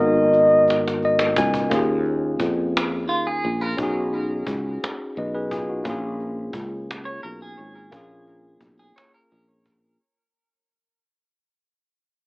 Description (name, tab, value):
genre	slow six-eight R&B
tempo	58 BPM (dotted quarters)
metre	6/8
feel	straight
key	unclear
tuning	A4 = 435 Hz
part	mellow horn-like synth lead	melody	0.0-1.4 s	D#5	-17 LUFS	equal	chorus
part	barky tine electric piano	accompaniment	0.0-10.0 s	A#3 to G#5	-24 LUFS	left 1 dB	none
part	sustaining fretless electric bass	bass	0.0-10.0 s	G#1 to E#2	-28 LUFS	equal	wide subtle chorus
part	cajon	drums	0.3-9.8 s	none	-27 LUFS	equal	none
part	clean electric guitar	second line	3.1-3.9, 7.1-10.0 s	E#4 to C#5	-28 LUFS	right 1 dB	harmonic tremolo, tape echo
room	light reverb, small room ambience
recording	AM radio sound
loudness	-19 LUFS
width	side -28 dB against mid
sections	0.0-1.7 A section; 1.7-10.0 B section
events	drum fill 0.7-1.7; tine electric piano fill 0.7-1.7; fade-out 1.7-10.0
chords	0.0 G#m7; 1.7 D#9sus4; 3.8 B69; 5.9 A#m7